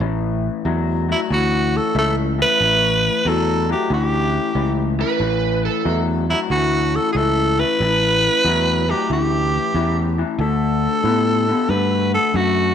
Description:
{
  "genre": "blues",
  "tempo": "92 BPM",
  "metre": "4/4",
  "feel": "swing 67% on 8ths",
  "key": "A mixolydian",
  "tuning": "A4 = 440 Hz",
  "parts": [
    { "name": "electric guitar through a small old amp", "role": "riff", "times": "0.0-12.7 s", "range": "A2 to B3", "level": "-22 LUFS", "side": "left 9 dB", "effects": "lush chorus" },
    { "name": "fingered electric bass", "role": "bass", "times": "0.0-12.7 s", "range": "A1 to A2", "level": "-21 LUFS", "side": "right 2 dB", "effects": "none" },
    { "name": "growling tenor saxophone", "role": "melody", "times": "1.1-12.7 s", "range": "E4 to B4", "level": "-19 LUFS", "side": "right 1 dB", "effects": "none" },
    { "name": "overdriven slide guitar", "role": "second line", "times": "5.0-6.0 s", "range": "A4 to B4", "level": "-23 LUFS", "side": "right 9 dB", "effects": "none" }
  ],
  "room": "moderate echo chamber reverb, RT60 1.8 s, digital ambience",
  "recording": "1960s-style stereo with parts hard left and right",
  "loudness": "-16 LUFS",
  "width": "side -8 dB against mid",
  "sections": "0.0-12.7 A section",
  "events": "none",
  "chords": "0.0 A13; 10.4 D6",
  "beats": "| 0.01 0.66 1.31 1.96 | 2.61 3.25 3.90 4.55 | 5.20 5.85 6.50 7.15 | 7.80 8.45 9.10 9.74 | 10.39 11.04 11.69 12.34"
}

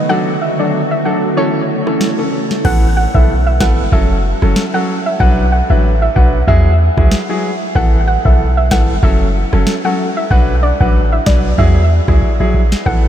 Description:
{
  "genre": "dancehall",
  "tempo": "94 BPM",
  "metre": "4/4",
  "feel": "swing 56% on 16ths",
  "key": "A major",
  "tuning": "A4 = 441 Hz",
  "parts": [
    { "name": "soft round pluck", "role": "melody", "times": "0.0-13.0 s", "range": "C#5 to F#5", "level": "-19 LUFS", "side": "equal", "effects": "chorus, tape echo" },
    { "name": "glassy FM pad", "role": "sustained chords", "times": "0.0-2.6 s", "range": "C#3 to F#4", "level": "-20 LUFS", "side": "equal", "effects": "ensemble chorus, built-in reverb, sidechain pumping" },
    { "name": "clear concert grand piano", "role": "accompaniment", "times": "0.1-13.1 s", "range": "E3 to B4", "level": "-18 LUFS", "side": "equal", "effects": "none" },
    { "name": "booming analog drum machine", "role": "drums", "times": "1.9-13.1 s", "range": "crash cymbal, kick drum, rim click, snare drum", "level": "-16 LUFS", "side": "equal", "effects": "none" },
    { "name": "warm 808-style bass", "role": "bass", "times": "2.6-13.1 s", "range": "F#1 to E2", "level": "-13 LUFS", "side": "equal", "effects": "none" }
  ],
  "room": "moderate huge ambient reverb, RT60 7.3 s",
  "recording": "dreamy mix soaked in reverb",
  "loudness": "-11 LUFS",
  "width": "side -10 dB against mid",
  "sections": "0.0-2.6 A section; 2.6-13.1 B section",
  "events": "kick muted 0.1-2.6; drum fill 12.2-12.9",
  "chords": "0.1 D; 1.4 A; 2.6 Asus2; 3.9 F#m; 5.2 Bm; 6.5 Eadd9; 7.8 Asus2; 9.0 F#m; 10.3 Bm; 11.6 Eadd9",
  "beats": "| 0.09 0.73 1.37 2.01 | 2.65 3.29 3.92 4.56 | 5.20 5.84 6.48 7.12 | 7.75 8.39 9.03 9.67 | 10.31 10.95 11.58 12.22 | 12.86"
}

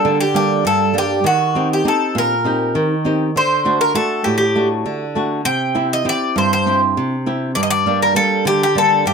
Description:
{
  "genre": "greek folk, Greek bouzouki band",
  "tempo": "200 BPM (eighths)",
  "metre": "7/8",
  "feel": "straight",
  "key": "unclear",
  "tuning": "A4 = 440 Hz",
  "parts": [
    { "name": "Greek bouzouki", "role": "melody", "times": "0.0-9.1 s", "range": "F#4 to G5", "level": "-16 LUFS", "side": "equal", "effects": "none" },
    { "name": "flamenco guitar", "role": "accompaniment", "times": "0.0-9.1 s", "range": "G2 to G4", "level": "-18 LUFS", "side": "right 2 dB", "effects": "none" }
  ],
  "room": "light reverb",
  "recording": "close, detailed microphones",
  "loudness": "-14 LUFS",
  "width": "side -5 dB against mid",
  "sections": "0.0-9.1 A section",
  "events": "none",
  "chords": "0.0 Gm; 1.3 Eb6; 3.4 D; 5.5 C; 7.6 Gm",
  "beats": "0.05 0.35 0.65 0.95 | 1.25 1.55 1.85 2.15 2.46 2.76 3.06 | 3.36 3.66 3.96 4.26 4.56 4.86 5.16 | 5.46 5.76 6.06 6.36 6.66 6.96 7.26 | 7.56 7.86 8.16 8.46 8.76 9.06"
}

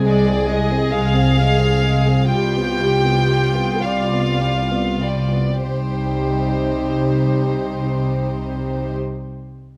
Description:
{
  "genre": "classical, slow romantic movement for string orchestra",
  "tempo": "32-47 BPM (dotted quarters)",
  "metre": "6/8",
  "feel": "rubato",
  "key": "C minor",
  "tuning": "A4 = 444 Hz",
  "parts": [
    { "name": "warm chamber violin section", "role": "second line", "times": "0.0-8.9 s", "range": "G3 to C5", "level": "-27 LUFS", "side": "equal", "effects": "none" },
    { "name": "dark studio viola section", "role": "accompaniment", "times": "0.0-8.9 s", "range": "G3 to D5", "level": "-26 LUFS", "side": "equal", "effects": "none" },
    { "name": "dark chamber double bass section", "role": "bass", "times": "0.0-9.0 s", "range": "C2", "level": "-24 LUFS", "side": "equal", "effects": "none" },
    { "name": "warm chamber cello section", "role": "bass", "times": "0.0-8.9 s", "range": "C2 to C3", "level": "-25 LUFS", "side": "equal", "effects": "none" },
    { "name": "warm chamber violin section", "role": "melody", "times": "0.1-9.0 s", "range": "C5 to G5", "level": "-27 LUFS", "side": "equal", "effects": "none" }
  ],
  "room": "moderate scoring stage reverb, RT60 1.6 s",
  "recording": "close, detailed microphones",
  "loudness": "-19 LUFS",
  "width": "mono",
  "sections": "0.0-5.6 A section; 5.6-9.0 B section",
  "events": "slowing down 0.0-5.6",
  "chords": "0.0 Fm/C; 2.3 G7/C; 5.6 Cm",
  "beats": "0.93 | 2.29 3.83 | 5.62 7.33"
}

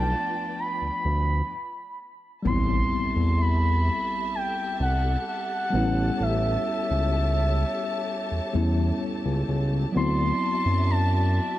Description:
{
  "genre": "contemporary R&B",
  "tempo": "64 BPM",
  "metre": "4/4",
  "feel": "straight",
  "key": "unclear",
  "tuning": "A4 = 439 Hz",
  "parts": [
    { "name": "gliding portamento lead", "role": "melody", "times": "0.0-11.6 s", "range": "E5 to C6", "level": "-28 LUFS", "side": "equal", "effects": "chorus" },
    { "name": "mellow tine electric piano", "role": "accompaniment", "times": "0.0-11.6 s", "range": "F3 to E4", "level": "-30 LUFS", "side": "left 2 dB", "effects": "medium stereo tremolo" },
    { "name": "dark studio string section", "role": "sustained chords", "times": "0.0-11.6 s", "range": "F4 to A5", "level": "-36 LUFS", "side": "equal", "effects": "none" },
    { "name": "smooth synth bass", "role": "bass", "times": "0.0-11.4 s", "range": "A1 to F#2", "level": "-23 LUFS", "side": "equal", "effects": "none" },
    { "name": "impact", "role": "sound effects", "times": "2.5-6.2 s", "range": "none", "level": "-33 LUFS", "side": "equal", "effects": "none" }
  ],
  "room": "light reverb, digital ambience",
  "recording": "dark, warm production",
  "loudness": "-22 LUFS",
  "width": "side -14 dB against mid",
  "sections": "0.0-2.5 A section; 2.5-11.6 B section",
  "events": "stop 1.5-2.5; impact 2.5-6.2",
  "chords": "0.0 G7; 2.5 Am9; 5.7 A9; 10.0 D13",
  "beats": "0.58 1.52 | 2.45 3.39 4.33 5.27 | 6.20 7.14 8.08 9.02 | 9.95 10.89"
}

